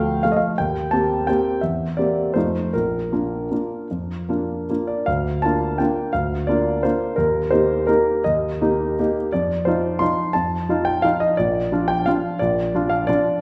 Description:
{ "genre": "classical, piano waltz", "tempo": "149-184 BPM", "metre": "3/4", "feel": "rubato", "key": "Bb major", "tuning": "A4 = 438 Hz", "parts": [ { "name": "warm concert grand piano", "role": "solo", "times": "0.0-13.4 s", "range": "Bb1 to C6", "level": "-21 LUFS", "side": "equal", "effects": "none" } ], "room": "wet large studio reverb, RT60 1.2 s", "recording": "heard from further back in the room", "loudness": "-21 LUFS", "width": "mono", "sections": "0.0-5.1 A section; 5.1-13.4 B section", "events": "none", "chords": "0.0 Dm; 0.6 Eb6; 1.6 C7/E; 2.4 F7; 2.7 Bb; 5.1 Bb/D; 7.2 Eb; 9.3 F7; 11.4 Bb" }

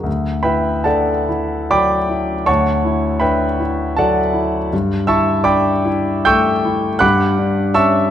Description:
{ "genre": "classical, impressionist solo piano", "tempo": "68-87 BPM", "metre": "3/4", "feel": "rubato", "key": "D major", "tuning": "A4 = 439 Hz", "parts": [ { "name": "clear concert grand piano", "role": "solo", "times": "0.0-8.1 s", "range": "D2 to G6", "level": "-14 LUFS", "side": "equal", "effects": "none" } ], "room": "moderate recital hall reverb, RT60 1.6 s", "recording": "dark, warm production", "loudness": "-14 LUFS", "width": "side -10 dB against mid", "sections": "0.1-8.1 A section", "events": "none", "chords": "0.1 D69; 2.5 F#m7/D; 4.7 G69; 7.0 Bm7/G" }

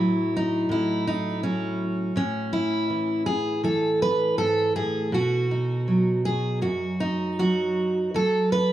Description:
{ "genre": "folk, solo fingerstyle acoustic guitar", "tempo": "81 BPM", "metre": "4/4", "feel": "rubato", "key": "unclear", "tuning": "A4 = 437 Hz", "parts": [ { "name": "fingerpicked steel-string acoustic guitar", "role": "solo", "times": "0.0-8.7 s", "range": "F#2 to B4", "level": "-22 LUFS", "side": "right 1 dB", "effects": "none" } ], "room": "light reverb", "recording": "small room ambience", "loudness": "-22 LUFS", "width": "side -13 dB against mid", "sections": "0.0-8.7 A section", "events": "none", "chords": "0.0 F#m/A; 2.2 A; 5.1 B; 8.1 F#m" }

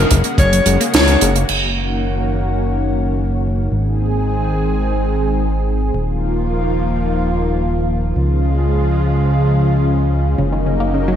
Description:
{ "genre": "synthwave", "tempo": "108 BPM", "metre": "4/4", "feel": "straight", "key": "unclear", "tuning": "A4 = 440 Hz", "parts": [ { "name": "warm alto saxophone", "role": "melody", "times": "0.0-1.4 s", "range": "Bb4 to Db5", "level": "-20 LUFS", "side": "left 3 dB", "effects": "ping-pong delay" }, { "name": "lush unison pad", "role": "sustained chords", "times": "0.0-11.2 s", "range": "Db3 to Ab4", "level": "-19 LUFS", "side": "equal", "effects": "chorus, sidechain pumping" }, { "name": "fat analog bass", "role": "bass", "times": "0.0-11.2 s", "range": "Eb1 to Db2", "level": "-17 LUFS", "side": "equal", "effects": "none" }, { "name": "wide unison pluck", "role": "arpeggios", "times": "0.1-1.5, 10.4-11.1 s", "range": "Db3 to Bb3", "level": "-23 LUFS", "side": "left 2 dB", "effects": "cassette tape, ping-pong delay" }, { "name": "compact cocktail drum kit", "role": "drums", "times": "0.1-1.6 s", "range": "crash cymbal, hi-hat, snare drum", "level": "-17 LUFS", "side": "right 2 dB", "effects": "gated reverb" }, { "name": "kick drum", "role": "drums", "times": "0.1-0.5 s", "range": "none", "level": "-15 LUFS", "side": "equal", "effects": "gated reverb" } ], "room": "moderate plate reverb, RT60 1.2 s", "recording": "bright 1980s-style digital production", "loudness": "-14 LUFS", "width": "side -9 dB against mid", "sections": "0.0-1.5 A section; 1.5-11.2 B section", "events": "kick drops out 0.9-1.5; band accent 0.9; filter sweep on analog synth pad 1.5-11.2", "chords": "0.0 Gbadd9; 1.5 Gb6; 3.7 Ab; 5.9 Ebsus2; 8.2 Db; 10.4 Gb6" }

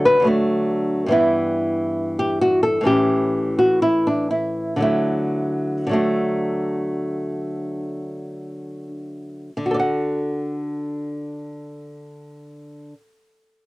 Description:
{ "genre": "classical, baroque-style dance for nylon-string guitar", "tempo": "46-72 BPM", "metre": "4/4", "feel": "rubato", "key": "D major", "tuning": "A4 = 440 Hz", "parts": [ { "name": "nylon-string guitar", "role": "solo", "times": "0.0-13.2 s", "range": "G2 to F#5", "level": "-19 LUFS", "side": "equal", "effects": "cassette tape" } ], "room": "moderate booth ambience, RT60 0.2 s", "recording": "home recording on cassette", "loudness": "-19 LUFS", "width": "side -20 dB against mid", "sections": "0.0-9.6 A section; 9.6-13.7 B section", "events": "slowing down 0.0-9.6", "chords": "0.0 D; 1.1 Em/G; 2.9 A; 4.8 D" }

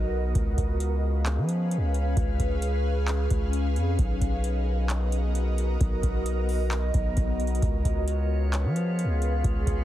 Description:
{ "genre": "hip hop, atmospheric cloud-rap", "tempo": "132 BPM", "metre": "4/4", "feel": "half-time", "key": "unclear", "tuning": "A4 = 441 Hz", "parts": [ { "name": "ethereal airy pad", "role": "sustained chords", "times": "0.0-9.8 s", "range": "B3 to E#5", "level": "-31 LUFS", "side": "equal", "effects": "ensemble chorus, built-in reverb, phaser, sidechain pumping" }, { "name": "long sustained 808-style bass", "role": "bass", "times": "0.0-9.8 s", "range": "B1 to E#3", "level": "-26 LUFS", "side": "equal", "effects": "none" }, { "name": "booming analog drum machine", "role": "drums", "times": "0.4-9.8 s", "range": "handclaps, hi-hat, kick drum", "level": "-28 LUFS", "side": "equal", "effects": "none" }, { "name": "drifting glass-harmonics texture", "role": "texture", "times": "8.0-9.8 s", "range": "B3 to D#5", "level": "-39 LUFS", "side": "right 2 dB", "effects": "chorus, built-in reverb" } ], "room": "digital ambience", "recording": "heavily compressed radio sound, multiband compression", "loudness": "-24 LUFS", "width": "side -13 dB against mid", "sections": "0.0-9.8 A section", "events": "break 0.0-0.4", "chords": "0.4 C#7; 4.0 Bmaj7; 7.6 C#7" }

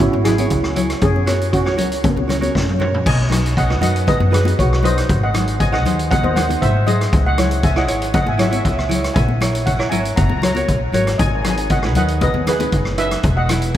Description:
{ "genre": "calypso", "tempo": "118 BPM", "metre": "4/4", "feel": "straight", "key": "B major", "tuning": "A4 = 440 Hz", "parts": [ { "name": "steel pan", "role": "melody", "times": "0.0-13.7 s", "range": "A#3 to A#5", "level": "-21 LUFS", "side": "right 1 dB", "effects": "none" }, { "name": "tenor ukulele", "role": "accompaniment", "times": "0.0-13.7 s", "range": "D#4 to D#5", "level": "-24 LUFS", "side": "right 3 dB", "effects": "none" }, { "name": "upright bass", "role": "bass", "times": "0.0-13.8 s", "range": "E1 to G#2", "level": "-20 LUFS", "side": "equal", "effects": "none" }, { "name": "street-band drum kit", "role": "drums", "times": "0.0-13.8 s", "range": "crash cymbal, hi-hat, kick drum, rim click, snare drum, toms", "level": "-20 LUFS", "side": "equal", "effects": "none" }, { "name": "congas", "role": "percussion", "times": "0.0-13.6 s", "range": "none", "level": "-25 LUFS", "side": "left 6 dB", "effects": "none" } ], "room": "moderate huge ambient reverb, RT60 8.0 s", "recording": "in a vast, echoing space", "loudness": "-14 LUFS", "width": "side -12 dB against mid", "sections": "0.0-3.1 A section; 3.1-13.8 A section", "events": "drum fill 2.5-3.1", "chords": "0.0 C#m; 1.0 F#add9; 3.1 B; 5.1 G#; 7.1 C#madd9; 9.2 A#m7b5; 10.2 F#; 11.2 G#m; 13.2 E" }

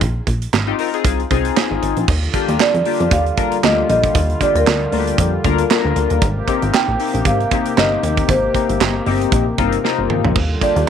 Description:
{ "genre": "early-eighties boogie funk", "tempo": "116 BPM", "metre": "4/4", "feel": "swing 56% on 16ths", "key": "Eb major", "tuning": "A4 = 440 Hz", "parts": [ { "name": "plucky analog bass", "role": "bass", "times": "0.0-10.8 s", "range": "G1 to F2", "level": "-20 LUFS", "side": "equal", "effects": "none" }, { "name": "modern studio drum kit", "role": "drums", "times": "0.0-10.9 s", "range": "crash cymbal, handclaps, hi-hat, kick drum, snare drum, toms", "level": "-19 LUFS", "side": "right 4 dB", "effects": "none" }, { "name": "chorused polysynth", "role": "accompaniment", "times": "0.7-10.9 s", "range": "D3 to Bb4", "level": "-20 LUFS", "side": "left 12 dB", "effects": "none" }, { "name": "warm analog pad", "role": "sustained chords", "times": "2.1-10.9 s", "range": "C3 to G4", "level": "-24 LUFS", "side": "left 1 dB", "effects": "chorus" }, { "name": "marimba with medium mallets", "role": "melody", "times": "2.6-10.9 s", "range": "Bb4 to G5", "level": "-20 LUFS", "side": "right 2 dB", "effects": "none" } ], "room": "moderate spring reverb, RT60 1.4 s, small room reverb", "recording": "1960s-style stereo", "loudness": "-14 LUFS", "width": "side -8 dB against mid", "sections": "0.0-2.1 A section; 2.1-10.9 B section", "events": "drum fill 9.8-10.4", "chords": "0.0 Bb9sus4; 2.1 Ebmaj9; 6.2 Abmaj9; 10.4 Ebmaj9" }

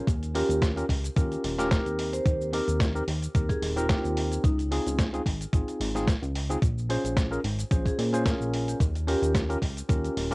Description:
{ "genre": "nu-disco, nu disco", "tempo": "110 BPM", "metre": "4/4", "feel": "swing 54% on 16ths", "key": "unclear", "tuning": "A4 = 441 Hz", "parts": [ { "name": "tine electric piano", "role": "accompaniment", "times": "0.0-10.3 s", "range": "C4 to C5", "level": "-30 LUFS", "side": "equal", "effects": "overdrive, sidechain pumping" }, { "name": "chorused synth bass", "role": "bass", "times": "0.1-10.3 s", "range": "Eb1 to Bb2", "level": "-30 LUFS", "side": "equal", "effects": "tube saturation, sidechain pumping" }, { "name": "dusty soul sampler-style drum kit", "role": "drums", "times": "0.1-10.3 s", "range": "cabasa, hi-hat, snare drum", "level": "-33 LUFS", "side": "equal", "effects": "overdrive" }, { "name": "electronic kick drum", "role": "drums", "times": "0.1-10.0 s", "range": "none", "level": "-25 LUFS", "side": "equal", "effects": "none" }, { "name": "vibraphone with medium mallets", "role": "melody", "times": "0.3-9.3 s", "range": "Eb4 to C5", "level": "-33 LUFS", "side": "right 1 dB", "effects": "analog delay" } ], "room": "moderate booth ambience, RT60 0.2 s", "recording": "home recording on cassette", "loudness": "-24 LUFS", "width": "side -25 dB against mid", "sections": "0.0-10.3 A section", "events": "none", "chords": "0.1 Eb7; 2.0 Eb69; 4.4 Dbmaj7; 6.6 Bbm7; 8.8 Eb7" }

